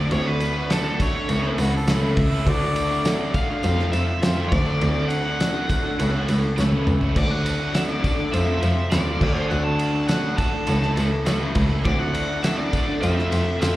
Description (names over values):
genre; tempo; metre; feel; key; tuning
folk rock and heartland rock; 102 BPM; 4/4; straight; D major; A4 = 440 Hz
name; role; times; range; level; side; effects
nasal lead guitar with a parked wah; melody; 0.0-13.8 s; A4 to A5; -29 LUFS; equal; overdrive, slapback echo, digital delay
bright grand piano; accompaniment; 0.0-13.8 s; C4 to C#6; -35 LUFS; equal; none
picked twelve-string acoustic guitar; accompaniment; 0.0-13.8 s; C#3 to A4; -29 LUFS; left 2 dB; slapback echo
overdriven electric guitar; riff; 0.0-13.8 s; F2 to F#4; -28 LUFS; equal; harmonic tremolo, slapback echo
warm cello; bass; 0.0-13.8 s; C#2 to F2; -23 LUFS; equal; none
cloth-damped thuddy drum kit; drums; 0.1-13.8 s; crash cymbal, kick drum, ride cymbal, snare drum, toms; -25 LUFS; equal; none
tambourine; percussion; 0.1-13.8 s; none; -41 LUFS; right 2 dB; none
clear harmonica; second line; 1.6-3.0 s; F#4 to E5; -28 LUFS; right 1 dB; slapback echo, digital delay
room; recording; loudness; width
light reverb; live gig heard through the venue's PA, recital hall reverb; -19 LUFS; side -16 dB against mid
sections
0.0-13.8 A section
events
drum fill 6.6-7.2; grand piano fill 11.0-11.9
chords
0.0 D; 1.3 A/C#; 2.5 D; 3.6 F; 4.5 D; 6.0 A/C#; 7.2 D; 8.3 F; 9.2 D; 10.7 A/C#; 11.9 D; 13.0 F